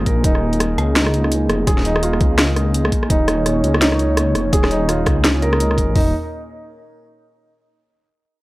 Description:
half-time drum and bass; 168 BPM; 4/4; swing 59% on 16ths, half-time; A4 = 441 Hz
dark analog pad; sustained chords; 0.0-6.1 s; Bb3 to Db5; -23 LUFS; equal; chorus, vintage 12-bit sampler grit, sidechain pumping
felt-muted upright piano; arpeggios; 0.0-6.1 s; Eb4 to Bb4; -22 LUFS; right 2 dB; vintage 12-bit sampler grit, low-pass filter, analog delay
dark detuned saw bass; bass; 0.0-6.1 s; Eb1 to Db2; -19 LUFS; equal
drum and bass drum kit; drums; 0.1-6.1 s; hi-hat, kick drum, toms; -17 LUFS; equal; overdrive
drum and bass drum kit; drums; 0.1-5.9 s; hi-hat, rim click, snare drum; -20 LUFS; equal; overdrive
little or no reverb; dry, gritty hardware recording; -14 LUFS; side -19 dB against mid
0.0-6.0 A section; 6.0-7.4 B section
0.0 Eb5
| 0.24 0.60 0.96 1.31 | 1.67 2.03 2.39 2.74 | 3.10 3.46 3.81 4.17 | 4.53 4.89 5.24 5.60 | 5.96

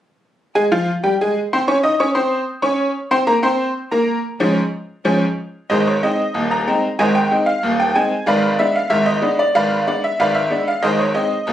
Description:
ragtime piano; 93 BPM; 2/4; straight; Ab major; A4 = 440 Hz
tack piano; solo; 0.6-11.5 s; Eb1 to Eb6; -15 LUFS; equal
moderate club reverb, RT60 0.5 s; recorded on a phone in the room, studio reverb, compression; -15 LUFS; side -11 dB against mid
0.5-5.7 A section; 5.7-11.5 B section
0.5 Ab; 3.1 Db; 5.7 Ab; 8.3 Abdim; 10.8 Ab
| 0.55 1.19 | 1.84 2.48 | 3.12 3.76 | 4.40 5.05 | 5.70 6.34 | 6.99 7.63 | 8.28 8.92 | 9.56 10.20 | 10.84 11.48

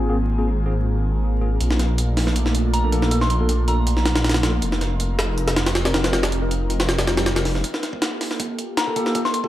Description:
drum and bass, jungle; 159 BPM; 4/4; straight; G minor; A4 = 445 Hz
airy breathy pad; sustained chords; 0.0-9.5 s; A3 to Bb4; -28 LUFS; right 2 dB; chorus, phaser
tine electric piano; stabs; 0.0-9.5 s; Bb3 to Bb4; -28 LUFS; left 1 dB; phaser, low-pass filter, dub echo
detuned saw bass; bass; 0.0-7.6 s; F1 to Bb1; -21 LUFS; equal
jungle sampler-style drum kit; drums; 1.6-9.5 s; hi-hat, kick drum, snare drum; -23 LUFS; equal; high-pass filter on hats, high-pass filter on snare, high-pass filter on kick, high-pass filter on room
soft synth bell; melody; 2.7-4.1, 8.8-9.4 s; Bb5 to C6; -28 LUFS; left 1 dB; chorus, phaser, vintage 12-bit sampler grit, dub echo
swell; sound effects; 7.1-7.6 s; -33 LUFS; left 1 dB
light reverb; vinyl crackle; -18 LUFS; side -13 dB against mid
0.0-7.6 A section; 7.6-9.5 B section
swell 7.1-7.6; build-up 7.6-9.5; filter sweep on tine electric piano 7.6-9.5
0.0 Ab69; 1.6 Bbmaj7; 4.6 F7sus4; 7.6 Gm9
| 0.09 0.47 0.85 1.23 | 1.60 1.98 2.36 2.74 | 3.11 3.49 3.87 4.25 | 4.62 5.00 5.38 5.75 | 6.13 6.51 6.89 7.26 | 7.64 8.02 8.40 8.77 | 9.15

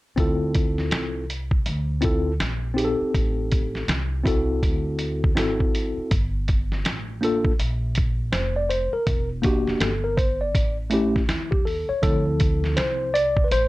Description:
hip hop, jazz-hop; 81 BPM; 4/4; swing 63% on 16ths; D minor; A4 = 440 Hz
mellow tine electric piano; accompaniment; 0.2-13.7 s; F3 to D5; -24 LUFS; left 1 dB; medium stereo tremolo
upright bass; bass; 0.2-13.7 s; E1 to Eb2; -27 LUFS; equal
lo-fi sampler-style drum kit; drums; 0.2-13.7 s; hi-hat, kick drum, snare drum; -24 LUFS; equal
light reverb; dark, warm production; -21 LUFS; side -18 dB against mid
0.2-12.0 A section; 12.0-13.7 B section
tine electric piano solo 12.0-13.7
0.2 Dm7; 3.1 Am7b5; 4.6 D7; 6.1 Gm9; 9.1 Em7b5; 10.6 A7; 12.0 Dm7
| 0.18 0.92 1.67 2.40 | 3.15 3.89 4.63 5.37 | 6.11 6.85 7.59 8.33 | 9.07 9.81 10.55 11.29 | 12.04 12.78 13.52

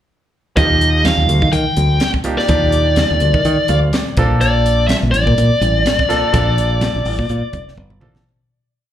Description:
electric jazz fusion; 125 BPM; 4/4; swing 55% on 16ths; Eb lydian; A4 = 440 Hz
smooth overdriven lead guitar; melody; 0.6-7.7 s; D5 to G5; -17 LUFS; left 1 dB
bright grand piano; accompaniment; 0.6-8.2 s; F3 to F5; -22 LUFS; right 2 dB; slapback echo
modern bright fingered electric bass; bass; 0.6-8.2 s; F1 to Eb3; -16 LUFS; equal
crisp fusion drum kit; drums; 0.6-8.3 s; hi-hat, kick drum, snare drum, toms; -20 LUFS; equal
congas; percussion; 0.6-8.2 s; -27 LUFS; right 2 dB
light reverb; live gig heard through the venue's PA, club reverb; -12 LUFS; side -11 dB against mid
0.6-8.3 groove
grand piano fill 3.4-4.4; fade-out 6.3-8.3; drum fill 7.8-8.3
0.6 Ebmaj9; 4.2 Bbmaj9
| 0.57 1.05 1.53 2.01 | 2.49 2.97 3.45 3.93 | 4.41 4.89 5.37 5.85 | 6.33 6.82 7.30 7.78

